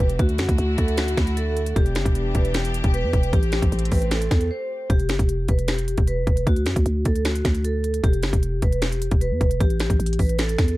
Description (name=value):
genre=hip hop, trap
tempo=153 BPM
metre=4/4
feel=half-time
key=E minor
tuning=A4 = 440 Hz
part: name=vibraphone with medium mallets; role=melody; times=0.0-10.8 s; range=F#4 to C5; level=-27 LUFS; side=right 1 dB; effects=low-pass filter, tape echo
part: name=warm studio string section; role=sustained chords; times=0.0-4.9 s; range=D3 to G4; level=-31 LUFS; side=left 2 dB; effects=none
part: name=growling 808-style bass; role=bass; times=0.0-10.8 s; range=E1 to F#2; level=-23 LUFS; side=equal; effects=none
part: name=trap drum kit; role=drums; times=0.0-10.8 s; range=finger snaps, hi-hat, kick drum, snare drum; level=-21 LUFS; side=equal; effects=none
room=little or no reverb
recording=dark, warm production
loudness=-19 LUFS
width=side -18 dB against mid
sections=0.0-4.9 A section; 4.9-10.8 A section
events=break 4.5-4.9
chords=0.2 Dadd9; 1.8 Em7; 3.3 Am7; 4.9 Em; 6.5 D; 8.0 Em; 9.6 A7(no3)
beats=| 0.19 0.58 0.98 1.37 | 1.76 2.15 2.55 2.94 | 3.33 3.72 4.11 4.51 | 4.90 5.29 5.68 6.08 | 6.47 6.86 7.25 7.64 | 8.04 8.43 8.82 9.21 | 9.61 10.00 10.39